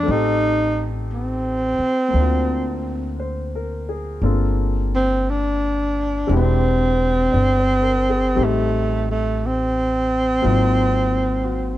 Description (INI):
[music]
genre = jazz ballad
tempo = 58 BPM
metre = 4/4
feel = swing 66% on 8ths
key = unclear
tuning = A4 = 435 Hz
[part]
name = breathy tenor saxophone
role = melody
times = 0.0-11.8 s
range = A3 to Eb4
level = -20 LUFS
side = right 1 dB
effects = none
[part]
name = warm grand piano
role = accompaniment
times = 0.0-11.8 s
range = Gb3 to D5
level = -26 LUFS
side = left 3 dB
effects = none
[part]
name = upright bass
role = bass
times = 0.0-11.8 s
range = E1 to D2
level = -22 LUFS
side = equal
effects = none
[sound]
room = little or no reverb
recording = none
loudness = -17 LUFS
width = side -14 dB against mid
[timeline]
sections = 0.0-11.8 A section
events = none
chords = 0.1 Am7b5; 2.1 D7alt; 4.2 Gm11; 6.3 E7alt; 8.4 Am7b5; 10.4 Ab13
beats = | 0.07 1.10 2.13 3.18 | 4.22 5.26 6.30 7.33 | 8.36 9.39 10.42 11.45